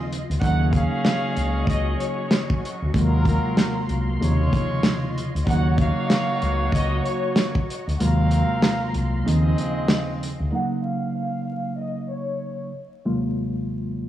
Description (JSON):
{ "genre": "hip hop, boom-bap hip-hop", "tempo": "95 BPM", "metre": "4/4", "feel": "swing 60% on 16ths", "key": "Eb dorian", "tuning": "A4 = 440 Hz", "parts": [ { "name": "mellow tine electric piano", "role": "accompaniment", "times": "0.0-14.1 s", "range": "Eb2 to F4", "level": "-25 LUFS", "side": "equal", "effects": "medium stereo tremolo, cassette tape, high-pass filter, low-pass filter" }, { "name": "muted studio string section", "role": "sustained chords", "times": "0.0-10.5 s", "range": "Gb3 to Db6", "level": "-34 LUFS", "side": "equal", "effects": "high-pass filter, low-pass filter" }, { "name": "clear trumpet section", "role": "stabs", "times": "0.0-10.2 s", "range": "Gb3 to F5", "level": "-30 LUFS", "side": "equal", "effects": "high-pass filter, low-pass filter, tape echo" }, { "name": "warm soul drum kit", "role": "drums", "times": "0.1-10.4 s", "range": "hi-hat, kick drum, snare drum", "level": "-23 LUFS", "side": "equal", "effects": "none" }, { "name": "deep dub fingered electric bass", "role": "bass", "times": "0.3-10.5 s", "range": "C2 to Eb2", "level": "-22 LUFS", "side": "equal", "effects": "none" }, { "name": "warm studio violin section", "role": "melody", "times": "0.4-12.6 s", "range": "Db5 to Gb5", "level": "-30 LUFS", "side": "left 1 dB", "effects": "high-pass filter, low-pass filter, tape echo" } ], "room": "little or no reverb", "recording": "dry, gritty hardware recording, transformer saturation, vinyl crackle", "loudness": "-20 LUFS", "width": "side -12 dB against mid", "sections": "0.0-10.5 A section; 10.5-14.1 B section", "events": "break 0.0-0.4; kick muted 8.0-10.5; filter sweep 10.5-14.1", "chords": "0.4 Ebm7; 2.9 Ab13/Eb; 4.2 Dbmaj9/Eb; 5.5 Ebm7; 8.0 Ab13/Eb; 9.3 Dbmaj9/Eb; 10.5 Ebm7; 13.0 Ab13/Eb" }